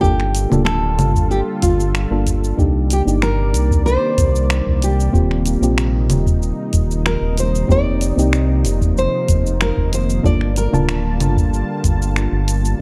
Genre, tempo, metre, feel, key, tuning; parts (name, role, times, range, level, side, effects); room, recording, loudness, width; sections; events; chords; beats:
sunset chillout; 94 BPM; 4/4; straight; A4 = 441 Hz
nylon-string guitar; melody; 0.0-11.5 s; F4 to D5; -24 LUFS; equal; tape echo
mellow FM electric piano; accompaniment; 0.0-12.8 s; Bb3 to A5; -26 LUFS; equal; chorus, digital delay
lush unison pad; sustained chords; 0.0-12.8 s; C3 to A5; -27 LUFS; equal; chorus
round analog bass; bass; 0.0-12.8 s; D1 to C2; -21 LUFS; equal
electronic kick drum; drums; 0.0-12.0 s; -20 LUFS; equal; overdrive
smooth R&B drum kit; drums; 0.0-12.8 s; congas, finger snaps, hi-hat, shaker; -26 LUFS; equal
digital ambience; dark, warm production; -17 LUFS; mono
0.0-12.8 A section
0.0 Gm9; 2.6 Cm9; 5.1 Eb6; 7.7 F7sus4; 10.2 Gm9
| 0.03 0.67 1.31 1.95 | 2.59 3.22 3.86 4.50 | 5.14 5.78 6.42 7.05 | 7.69 8.33 8.97 9.61 | 10.25 10.88 11.52 12.16 | 12.80